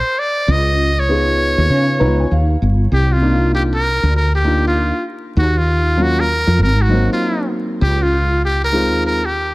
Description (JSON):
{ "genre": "hip hop, jazz-hop", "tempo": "98 BPM", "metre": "4/4", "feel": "swing 62% on 16ths", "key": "C minor", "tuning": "A4 = 440 Hz", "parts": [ { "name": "trumpet with metal mute", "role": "melody", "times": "0.0-9.5 s", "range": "F4 to Eb5", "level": "-18 LUFS", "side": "equal", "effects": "none" }, { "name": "woody fretless electric bass", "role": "bass", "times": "0.5-9.5 s", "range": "G1 to Db3", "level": "-15 LUFS", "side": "equal", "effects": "ensemble chorus" }, { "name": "dark grand piano", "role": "accompaniment", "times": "1.1-9.2 s", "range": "Gb3 to Bb5", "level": "-20 LUFS", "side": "equal", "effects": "none" } ], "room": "light reverb, small room ambience", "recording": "dark, warm production, vinyl crackle", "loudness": "-13 LUFS", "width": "side -21 dB against mid", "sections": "0.0-2.9 A section; 2.9-9.5 B section", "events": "muted trumpet solo 0.0-2.9; grand piano fill 1.7-2.9", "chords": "0.5 Db9; 2.9 Cm11; 5.4 Ebm7; 6.6 Ab7; 7.8 Dbmaj7", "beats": "| 0.47 1.08 1.70 2.31 | 2.92 3.53 4.14 4.76 | 5.37 5.98 6.59 7.21 | 7.82 8.43 9.04" }